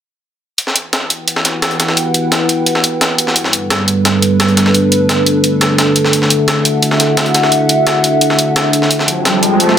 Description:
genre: dark technical drum and bass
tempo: 173 BPM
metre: 4/4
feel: straight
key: E minor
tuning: A4 = 437 Hz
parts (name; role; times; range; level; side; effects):
- dark analog pad; sustained chords; 1.3-9.8 s; G3 to A5; -13 LUFS; equal; chorus
- breakbeat sampler-style drum kit; drums; 0.6-9.8 s; hi-hat, snare drum; -16 LUFS; equal; high-pass filter on hats, studio reverb, high-pass filter on snare
- electronic hi-hat; drums; 0.6-9.7 s; none; -15 LUFS; equal; overdrive, studio reverb
- riser; sound effects; 9.1-9.8 s; none; -14 LUFS; right 2 dB; none
room: moderate digital room reverb, RT60 1.1 s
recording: dense, heavily limited modern master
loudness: -10 LUFS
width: side -9 dB against mid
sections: 0.6-9.8 A section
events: riser 9.1-9.8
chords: 0.6 Em; 3.4 Gadd9; 6.1 Dadd9; 8.9 Fadd9

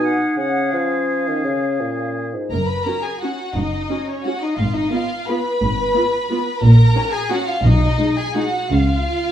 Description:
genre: classical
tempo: 158-190 BPM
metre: 3/4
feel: rubato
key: F# major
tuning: A4 = 436 Hz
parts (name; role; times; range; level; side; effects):
- bright small flute group; second line; 0.0-2.2 s; E#5 to F#5; -26 LUFS; equal; none
- clear oboe; second line; 0.0-2.3 s; G#4; -25 LUFS; equal; none
- warm clarinet; second line; 0.0-2.3 s; C#4 to D#4; -23 LUFS; equal; none
- dark bassoon; accompaniment; 0.0-2.5 s; G#2 to E#3; -23 LUFS; left 2 dB; none
- warm studio violin section; melody; 2.5-9.3 s; C#5 to B5; -25 LUFS; left 2 dB; none
- rich studio violin section; second line; 2.5-9.3 s; C#4 to B4; -23 LUFS; left 1 dB; none
- rich chamber double bass section; bass; 2.5-9.0 s; F#1 to C#2; -16 LUFS; equal; none
- warm studio cello section; bass; 2.5-9.0 s; F#2 to C#3; -21 LUFS; right 1 dB; none
- warm studio viola section; accompaniment; 2.9-9.3 s; G#3 to F#4; -25 LUFS; right 1 dB; none
- timpani; percussion; 7.6-8.1 s; B2; -20 LUFS; equal; none
room: wet stone room reverb, RT60 1.0 s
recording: heard from further back in the room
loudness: -16 LUFS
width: side -10 dB against mid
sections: 0.0-2.5 A section; 2.5-9.3 A section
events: none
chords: 0.4 C#; 2.5 F#5; 4.6 Fdim/Ab; 6.6 F#/A#; 7.6 G#m/B; 8.7 C#

